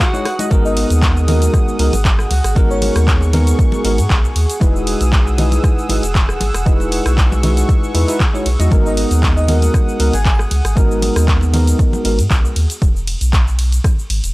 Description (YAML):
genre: deep house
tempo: 117 BPM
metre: 4/4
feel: swing 54% on 16ths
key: G# minor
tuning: A4 = 441 Hz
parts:
  - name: growling tenor saxophone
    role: melody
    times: 0.0-0.5 s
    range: F#4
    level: -27 LUFS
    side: equal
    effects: tape echo
  - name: warm analog pad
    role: sustained chords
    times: 0.0-12.8 s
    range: G#4 to F#6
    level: -26 LUFS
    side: right 1 dB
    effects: chorus, sidechain pumping
  - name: electronic kick drum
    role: drums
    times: 0.0-14.0 s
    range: none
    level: -14 LUFS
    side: equal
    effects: none
  - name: punchy analog drum machine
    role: drums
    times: 0.0-14.3 s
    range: cabasa, handclaps, hi-hat, ride cymbal, rim click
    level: -23 LUFS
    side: equal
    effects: none
  - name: congas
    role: percussion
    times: 0.0-12.4 s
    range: none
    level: -25 LUFS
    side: left 1 dB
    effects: none
  - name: tine electric piano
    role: stabs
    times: 0.1-12.2 s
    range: G#3 to D#5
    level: -20 LUFS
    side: equal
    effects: wide subtle chorus, sidechain pumping, analog delay
  - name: round analog bass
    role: bass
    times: 0.5-14.3 s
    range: E1 to G#2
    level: -15 LUFS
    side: equal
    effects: sidechain pumping
  - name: airy dreamy lead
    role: melody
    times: 0.6-2.9, 8.9-10.3 s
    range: C#5 to G#5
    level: -26 LUFS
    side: equal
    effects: chorus, analog delay
room: little or no reverb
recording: dry, gritty hardware recording, transformer saturation, cassette tape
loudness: -12 LUFS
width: side -20 dB against mid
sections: 0.0-14.3 A section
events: none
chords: 0.0 Emaj9; 0.5 G#m7; 4.6 Emaj9; 8.7 G#m7; 12.8 E5